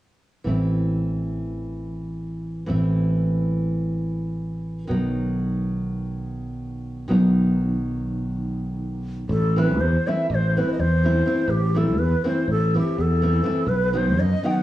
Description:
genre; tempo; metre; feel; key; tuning
balkan folk; 246 BPM (eighths); 9/8; straight; A dorian sharp4; A4 = 440 Hz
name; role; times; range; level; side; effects
nylon-string guitar; accompaniment; 0.4-14.6 s; D#3 to E4; -25 LUFS; equal; plate reverb
fretless electric bass; bass; 0.5-14.3 s; A1 to F#2; -23 LUFS; equal; tube saturation
breathy bright low ney; melody; 9.3-14.6 s; G4 to G5; -24 LUFS; left 1 dB; plate reverb
room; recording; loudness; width
moderate small room reverb, RT60 0.5 s; dry, gritty hardware recording, cassette tape, small room ambience; -20 LUFS; side -14 dB against mid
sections
0.5-9.3 A section; 9.3-14.6 B section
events
none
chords
0.5 Am; 4.9 B; 9.3 Am; 13.7 B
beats
| 0.47 0.72 0.96 1.21 1.46 1.70 1.95 2.19 2.44 | 2.69 2.93 3.18 3.42 3.67 3.91 4.16 4.40 4.65 | 4.89 5.14 5.38 5.63 5.87 6.12 6.36 6.61 6.85 | 7.10 7.34 7.58 7.83 8.07 8.32 8.56 8.80 9.05 | 9.29 9.54 9.78 10.02 10.27 10.51 10.75 10.99 11.24 | 11.48 11.72 11.96 12.21 12.45 12.69 12.94 13.18 13.42 | 13.66 13.91 14.15 14.39

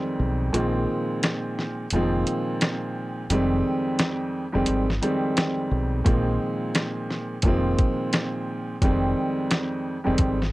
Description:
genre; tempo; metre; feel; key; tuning
hip hop, boom-bap hip-hop; 87 BPM; 4/4; swing 62% on 16ths; F minor; A4 = 440 Hz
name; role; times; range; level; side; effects
warm upright piano; accompaniment; 0.0-10.4 s; F2 to C4; -25 LUFS; equal; cassette tape, high-pass filter, low-pass filter
deep dub fingered electric bass; bass; 0.2-10.5 s; F1 to B1; -25 LUFS; equal; none
lo-fi sampler-style drum kit; drums; 0.5-10.5 s; hi-hat, kick drum, snare drum; -23 LUFS; equal; none
room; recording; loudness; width
light reverb; home recording on cassette; -22 LUFS; side -19 dB against mid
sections
0.0-10.5 A section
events
break 0.0-6.1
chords
0.0 Fm7; 0.5 Bb7sus4; 3.3 Fm7; 6.1 Bb7sus4; 8.8 Fm7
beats
| 0.54 1.23 1.92 2.61 | 3.30 3.99 4.68 5.37 | 6.06 6.75 7.44 8.13 | 8.82 9.51 10.20

